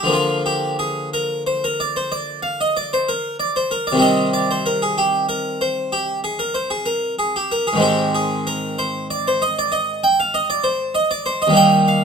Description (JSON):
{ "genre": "classical, baroque-style suite movement for harpsichord", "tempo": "63 BPM (dotted quarters)", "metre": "12/8", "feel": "rubato", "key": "unclear", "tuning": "A4 = 440 Hz", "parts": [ { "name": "harpsichord", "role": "solo", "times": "0.0-12.0 s", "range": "Eb2 to G5", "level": "-17 LUFS", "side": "equal", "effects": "none" } ], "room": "moderate stone room reverb, RT60 1.1 s", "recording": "close, detailed microphones", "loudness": "-17 LUFS", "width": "side -6 dB against mid", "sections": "0.1-12.0 A section", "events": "none", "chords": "0.1 Bb/D; 4.0 Cm; 7.8 Ab" }